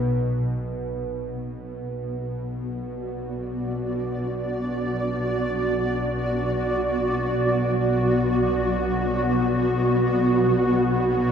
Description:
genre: dark ambient drone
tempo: free time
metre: none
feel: none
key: B minor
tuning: A4 = 438 Hz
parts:
  - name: granular cloud pad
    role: sustained chords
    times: 1.2-11.3 s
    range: B3 to D5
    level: -23 LUFS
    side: right 1 dB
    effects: built-in reverb
  - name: bowed-like drone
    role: drone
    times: 0.0-11.3 s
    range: B1 to B2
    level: -26 LUFS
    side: left 1 dB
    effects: built-in reverb
room: wet cathedral reverb, RT60 6.1 s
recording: dreamy mix soaked in reverb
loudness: -22 LUFS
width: side -7 dB against mid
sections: 0.0-11.3 A section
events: fade-in on synth drone 0.0-11.3; fade-in on ambient pad 0.0-11.3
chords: 0.0 Bm

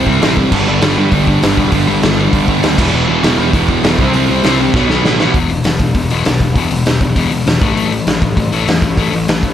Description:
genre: punk rock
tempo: 199 BPM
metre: 4/4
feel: straight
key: unclear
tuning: A4 = 441 Hz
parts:
  - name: distorted electric guitar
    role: riff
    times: 0.0-5.4 s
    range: E2 to C4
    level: -20 LUFS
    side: right 3 dB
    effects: distortion
  - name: sludgy distorted guitar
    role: riff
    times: 0.0-9.5 s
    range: E2 to C4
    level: -16 LUFS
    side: left 6 dB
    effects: overdrive
  - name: sludgy distorted guitar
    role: riff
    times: 0.0-5.3 s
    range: G2 to E4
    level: -17 LUFS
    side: right 12 dB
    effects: overdrive
  - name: fuzz picked electric bass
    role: bass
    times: 0.0-9.5 s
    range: E1 to G2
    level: -19 LUFS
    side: equal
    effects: overdrive
  - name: raw garage drum kit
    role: drums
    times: 0.1-9.5 s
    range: crash cymbal, hi-hat, kick drum, snare drum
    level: -15 LUFS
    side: equal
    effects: none
room: light reverb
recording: none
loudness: -10 LUFS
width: side -10 dB against mid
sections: 0.0-5.3 A section; 5.3-9.5 B section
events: drum fill 4.7-5.3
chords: 0.0 C; 0.5 G; 2.8 E; 4.0 C; 4.7 B; 5.3 E5; 7.6 A5

